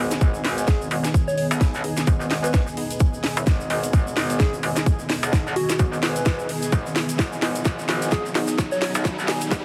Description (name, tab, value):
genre	bass house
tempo	129 BPM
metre	4/4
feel	swing 58% on 16ths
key	G# minor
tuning	A4 = 441 Hz
part	sweeping resonant pad	sustained chords	0.0-9.6 s	D#3 to G#4	-34 LUFS	equal	chorus, sidechain pumping
part	band-passed chord stab	stabs	0.0-9.6 s	B3 to D#5	-34 LUFS	equal	none
part	metallic wobble bass	bass	0.0-9.6 s	F#1 to B1	-29 LUFS	equal	chorus, tube saturation, sidechain pumping, high-pass filter
part	riser	sound effects	5.0-9.6 s	none	-39 LUFS	equal	none
part	granular cloud pad	texture	0.0-9.6 s	B3 to G#5	-35 LUFS	equal	built-in reverb, sidechain pumping
part	house drum kit	drums	0.1-9.6 s	hi-hat, snare drum	-30 LUFS	equal	overdrive
part	tube shaker	percussion	0.1-9.6 s	none	-38 LUFS	equal	none
part	electronic kick drum	drums	0.2-9.6 s	none	-24 LUFS	equal	none
part	soft struck synth lead	melody	0.7-8.9 s	F#4 to C#5	-30 LUFS	equal	chorus, digital delay
room	light reverb, digital ambience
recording	heavily compressed radio sound, high-pass filter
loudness	-22 LUFS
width	mono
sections	0.0-9.6 A section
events	build-up 0.0-9.6; drum fill 0.0-9.6; filter sweep on synth stab 0.0-9.6; filter sweep on analog synth pad 0.0-9.6; filter sweep 0.0-9.6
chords	0.0 G#m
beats	0.21 0.68 1.14 | 1.61 2.07 2.54 3.00 | 3.47 3.93 4.40 4.86 | 5.33 5.79 6.26 6.72 | 7.19 7.65 8.12 8.58 | 9.05 9.52